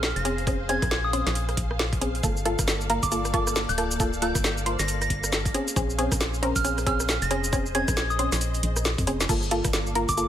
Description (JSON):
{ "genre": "UK garage, two-step garage", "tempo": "136 BPM", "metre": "4/4", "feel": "swing 60% on 16ths", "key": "unclear", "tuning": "A4 = 440 Hz", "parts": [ { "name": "soft string machine", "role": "sustained chords", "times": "0.0-10.3 s", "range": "Bb3 to F5", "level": "-36 LUFS", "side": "equal", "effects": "phaser, ensemble chorus, sidechain pumping" }, { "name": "punchy chord stab", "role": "stabs", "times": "0.0-10.3 s", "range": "Bb3 to C5", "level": "-28 LUFS", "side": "equal", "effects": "chorus, cassette tape, tape echo" }, { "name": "organ-like FM bass", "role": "bass", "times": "0.0-10.3 s", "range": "D1 to F2", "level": "-29 LUFS", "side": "equal", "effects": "sidechain pumping" }, { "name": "garage drum kit", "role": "drums", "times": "0.0-10.3 s", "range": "crash cymbal, hi-hat, rim click, shaker, snare drum", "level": "-28 LUFS", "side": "equal", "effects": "overdrive" }, { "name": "soft synth bell", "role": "melody", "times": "0.2-10.3 s", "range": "D6 to Bb6", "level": "-30 LUFS", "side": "right 1 dB", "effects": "chorus, phaser, tape echo" }, { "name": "electronic kick drum", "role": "drums", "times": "0.5-10.2 s", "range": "none", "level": "-29 LUFS", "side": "equal", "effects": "overdrive" } ], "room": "light reverb, digital ambience", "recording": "none", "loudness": "-22 LUFS", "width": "side -11 dB against mid", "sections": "0.0-10.3 A section", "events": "filter sweep on synth stab 0.0-10.3; drum fill 8.9-9.3", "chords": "0.0 Bbm9; 2.2 Gm9; 5.5 Bbm9; 9.3 Gm9", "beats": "0.03 | 0.47 0.91 1.35 1.79 | 2.23 2.67 3.12 3.56 | 4.00 4.44 4.88 5.32 | 5.76 6.21 6.65 7.09 | 7.53 7.97 8.41 8.85 | 9.29 9.73 10.18" }